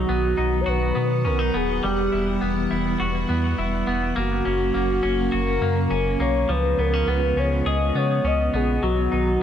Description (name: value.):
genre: dream pop.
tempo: 103 BPM.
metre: 4/4.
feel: straight.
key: B major.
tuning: A4 = 440 Hz.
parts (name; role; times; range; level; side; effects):
warm velvety synth lead; melody; 0.0-9.4 s; F#4 to D#5; -25 LUFS; left 1 dB; chorus, dub echo.
string machine, full ensemble; sustained chords; 0.0-9.4 s; C#3 to F#5; -27 LUFS; right 1 dB; ensemble chorus.
semi-hollow electric guitar; arpeggios; 0.0-9.4 s; E#3 to G#4; -26 LUFS; left 2 dB; lush chorus, dub echo.
sub bass with octave; bass; 0.0-9.4 s; D#1 to C#3; -25 LUFS; equal; none.
room: moderate spring reverb, RT60 2.2 s.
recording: echo-heavy mix.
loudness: -20 LUFS.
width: side -9 dB against mid.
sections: 0.0-9.4 A section.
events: none.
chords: 0.0 B; 1.8 Emadd9; 4.2 F#; 6.5 C#7; 8.8 B.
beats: 0.09 0.67 1.25 | 1.83 2.42 3.00 3.58 | 4.16 4.75 5.33 5.91 | 6.49 7.08 7.66 8.24 | 8.82 9.41.